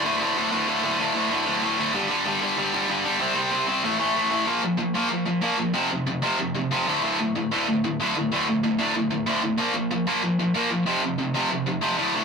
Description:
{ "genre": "punk", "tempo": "188 BPM", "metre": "4/4", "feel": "straight", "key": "unclear", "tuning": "A4 = 440 Hz", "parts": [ { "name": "tight distorted guitar", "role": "solo", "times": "0.0-12.2 s", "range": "D2 to C4", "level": "-21 LUFS", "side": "equal", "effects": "distortion" } ], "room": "moderate small room reverb, RT60 0.5 s", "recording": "rough rehearsal-room recording, warm saturation", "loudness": "-21 LUFS", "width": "side -5 dB against mid", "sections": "0.0-4.5 A section; 4.5-12.2 B section", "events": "none", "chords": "0.0 D5; 1.9 G5; 3.2 C5; 3.8 A5; 4.5 Bb5; 5.7 F5; 6.9 D5; 9.6 Bb5; 10.9 F5" }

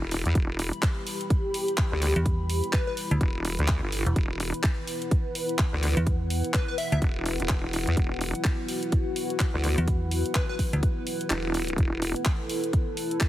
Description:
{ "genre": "bass house", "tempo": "126 BPM", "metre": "4/4", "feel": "swing 59% on 16ths", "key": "E minor", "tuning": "A4 = 441 Hz", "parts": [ { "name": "sweeping resonant pad", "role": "sustained chords", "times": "0.7-13.3 s", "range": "B3 to B4", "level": "-34 LUFS", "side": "equal", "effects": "chorus, vintage 12-bit sampler grit, sidechain pumping" }, { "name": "vowel-sweep wobble bass", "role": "bass", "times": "0.0-12.1 s", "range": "E1 to E2", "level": "-27 LUFS", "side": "equal", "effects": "chorus, tube saturation, sidechain pumping" }, { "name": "warbly tape-like pad", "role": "texture", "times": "0.0-13.3 s", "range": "E4 to B5", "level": "-35 LUFS", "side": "left 1 dB", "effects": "chorus, built-in reverb, phaser, sidechain pumping" }, { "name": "garage drum kit", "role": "drums", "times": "0.1-13.3 s", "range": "handclaps, hi-hat", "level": "-32 LUFS", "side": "equal", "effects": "none" }, { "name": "electronic kick drum", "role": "drums", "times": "0.4-13.3 s", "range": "none", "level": "-25 LUFS", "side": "equal", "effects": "none" }, { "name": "metallic FM bass", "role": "bass", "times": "2.2-10.8 s", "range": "E1 to E2", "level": "-25 LUFS", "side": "equal", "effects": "tube saturation, sidechain pumping" }, { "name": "plucky unison lead", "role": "melody", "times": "2.7-2.9, 6.5-7.0, 10.4-10.6 s", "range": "B4 to E5", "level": "-36 LUFS", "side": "left 3 dB", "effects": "phaser, tape echo" } ], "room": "digital ambience", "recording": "heavily compressed radio sound, multiband compression", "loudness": "-24 LUFS", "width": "side -14 dB against mid", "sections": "0.0-13.3 A section", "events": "kick drops out 11.3-11.8", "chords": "0.0 E5" }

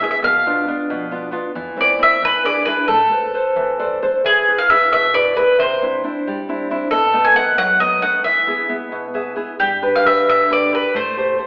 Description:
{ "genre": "italian folk, Italian serenade", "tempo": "90 BPM (dotted quarters)", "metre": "6/8", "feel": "straight", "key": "unclear", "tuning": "A4 = 442 Hz", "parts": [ { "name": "bowl-back mandolin", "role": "melody", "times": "0.0-11.4 s", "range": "G4 to G#5", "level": "-17 LUFS", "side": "equal", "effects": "none" }, { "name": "nylon-string guitar", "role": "accompaniment", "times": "0.0-11.5 s", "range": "B2 to E5", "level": "-22 LUFS", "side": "equal", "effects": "none" }, { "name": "upright bass", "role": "bass", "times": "0.2-4.0, 9.6-11.4 s", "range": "A1 to A2", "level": "-43 LUFS", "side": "equal", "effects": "none" } ], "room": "wet recital hall reverb, RT60 1.4 s", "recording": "recorded in a church or concert hall, telephone sound", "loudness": "-17 LUFS", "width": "mono", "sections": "0.0-4.2 A section; 4.2-11.5 B section", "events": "nylon-string guitar fill 3.6-4.2, 8.9-9.6", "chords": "0.2 Bdim; 1.6 Am/E; 2.2 E7; 2.9 Amadd9; 4.2 E; 5.6 Cadd9; 6.9 B7; 8.2 E; 9.6 G; 10.9 Am7" }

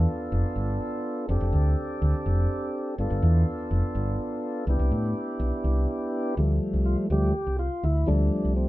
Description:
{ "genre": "progressive instrumental, progressive", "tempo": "248 BPM (eighths)", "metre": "7/8", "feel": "straight", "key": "unclear", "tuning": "A4 = 438 Hz", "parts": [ { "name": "tonewheel organ", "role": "accompaniment", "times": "0.0-8.7 s", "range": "F3 to A4", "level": "-28 LUFS", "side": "equal", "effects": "slow rotary speaker" }, { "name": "fingered electric bass", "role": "bass", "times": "0.0-8.6 s", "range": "F1 to A2", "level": "-24 LUFS", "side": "equal", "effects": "none" } ], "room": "moderate studio reverb, RT60 0.6 s", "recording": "band playing live in one room", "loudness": "-23 LUFS", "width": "side -17 dB against mid", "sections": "0.0-6.4 A section; 6.4-8.7 B section", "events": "tonewheel organ solo 6.4-8.7", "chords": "0.0 G7; 1.3 F6; 3.0 G7; 4.7 Cmaj7; 6.4 Fadd9" }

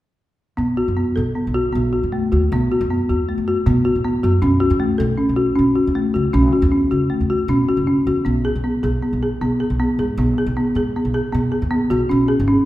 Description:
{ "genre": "contemporary instrumental, chamber music in an uneven meter", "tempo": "156 BPM", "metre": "5/4", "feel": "straight", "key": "B mixolydian", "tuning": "A4 = 439 Hz", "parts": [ { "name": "folk marimba with medium hard mallets", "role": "arpeggios", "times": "0.6-12.6 s", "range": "A3 to A4", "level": "-17 LUFS", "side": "left 1 dB", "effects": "none" }, { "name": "upright bass", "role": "bass", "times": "0.6-12.5 s", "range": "F#1 to B2", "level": "-21 LUFS", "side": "right 1 dB", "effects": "none" } ], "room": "wet recital hall reverb, RT60 1.4 s", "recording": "recorded in a church or concert hall", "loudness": "-16 LUFS", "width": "side -15 dB against mid", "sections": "0.6-12.7 A section", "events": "none", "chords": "0.6 B7(no3); 4.4 A6/B; 8.3 B5; 12.1 C#7(no3)" }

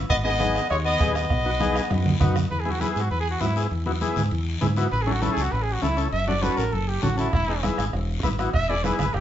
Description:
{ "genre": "latin, cumbia", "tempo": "199 BPM", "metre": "4/4", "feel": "straight", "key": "E major", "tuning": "A4 = 440 Hz", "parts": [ { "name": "fingered electric bass", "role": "bass", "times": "0.0-9.2 s", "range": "E1 to G#2", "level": "-26 LUFS", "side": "equal", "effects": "none" }, { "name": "warm trumpet", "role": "melody", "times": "0.1-9.2 s", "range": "E4 to E5", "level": "-26 LUFS", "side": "right 1 dB", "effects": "none" }, { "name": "raspy tenor saxophone", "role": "second line", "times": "0.1-2.2 s", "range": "G#3 to B3", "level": "-29 LUFS", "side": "left 3 dB", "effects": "none" }, { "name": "bombo", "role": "percussion", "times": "0.1-2.5, 7.3-9.2 s", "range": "none", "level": "-28 LUFS", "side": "right 2 dB", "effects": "none" }, { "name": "guiro", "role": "percussion", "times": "0.1-9.2 s", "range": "none", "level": "-38 LUFS", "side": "left 5 dB", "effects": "none" }, { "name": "combo organ", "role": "accompaniment", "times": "0.2-9.1 s", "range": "B3 to B4", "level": "-28 LUFS", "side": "left 2 dB", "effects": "none" }, { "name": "congas", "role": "percussion", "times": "0.4-9.1 s", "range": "none", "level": "-29 LUFS", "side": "right 1 dB", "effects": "none" } ], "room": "wet studio reverb, RT60 0.8 s", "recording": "band playing live in one room, nothing above 7.7 kHz", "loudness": "-21 LUFS", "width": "side -11 dB against mid", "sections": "0.0-2.5 A section; 2.5-9.2 B section", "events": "drum fill 1.6-2.5; trumpet solo 2.5-9.2", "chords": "0.1 G#m; 1.3 B; 2.5 E; 4.9 A; 6.1 F#m; 7.3 E" }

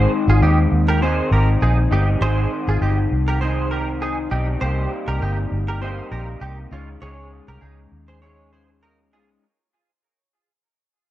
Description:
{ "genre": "indie pop, bedroom pop", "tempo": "100 BPM", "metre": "4/4", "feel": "swing 55% on 16ths", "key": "Ab major", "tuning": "A4 = 439 Hz", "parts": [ { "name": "direct-recorded clean electric guitar", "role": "second line", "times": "0.0-9.3 s", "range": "Db4 to Db5", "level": "-26 LUFS", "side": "right 2 dB", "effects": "ensemble chorus, analog delay" }, { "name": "electric guitar through a small old amp", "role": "accompaniment", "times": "0.0-9.4 s", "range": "Ab2 to Eb4", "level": "-25 LUFS", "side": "left 2 dB", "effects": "analog chorus, warbly pitch drift" }, { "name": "vintage muted fingered electric bass", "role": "bass", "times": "0.0-9.4 s", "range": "G1 to Eb2", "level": "-19 LUFS", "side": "equal", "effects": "none" } ], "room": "light reverb", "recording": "none", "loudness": "-17 LUFS", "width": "side -14 dB against mid", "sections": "0.0-9.4 A section", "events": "fade-out 0.0-9.4", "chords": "0.0 Abmaj7; 4.6 Cm7; 6.7 Dbsus2" }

